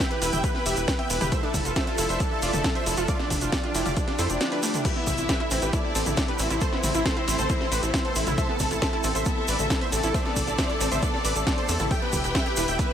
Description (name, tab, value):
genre	uplifting trance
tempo	136 BPM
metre	4/4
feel	straight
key	A minor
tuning	A4 = 440 Hz
part	dense compressed supersaw	melody	0.0-12.9 s	C4 to G5	-29 LUFS	right 1 dB	sidechain pumping, diffuse ambient delay
part	analog pluck	second line	0.0-12.9 s	D4 to G5	-36 LUFS	left 2 dB	none
part	lush unison pad	sustained chords	0.0-12.9 s	C3 to B4	-34 LUFS	equal	chorus, vintage 12-bit sampler grit, sidechain pumping
part	wide unison pluck	arpeggios	0.0-12.8 s	G3 to G5	-33 LUFS	right 3 dB	lush chorus, sidechain pumping, analog delay
part	electronic kick drum	drums	0.0-12.9 s	none	-28 LUFS	equal	overdrive
part	techno drum kit	drums	0.0-12.9 s	crash cymbal, hi-hat, snare drum, toms	-30 LUFS	left 1 dB	none
part	tube shaker	percussion	0.0-12.9 s	none	-34 LUFS	right 3 dB	none
part	tight sequencer bass	bass	0.2-12.8 s	E1 to F2	-30 LUFS	equal	tube saturation, sidechain pumping
part	clear studio violin section	second line	4.8-12.9 s	C4 to A5	-32 LUFS	left 3 dB	analog delay
room	moderate huge ambient reverb, RT60 8.0 s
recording	dreamy mix soaked in reverb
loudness	-22 LUFS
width	side -9 dB against mid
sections	0.0-12.9 A section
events	kick drops out 4.4-4.8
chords	0.0 Em; 1.3 Dmadd9/F; 4.8 Amadd9; 11.9 Em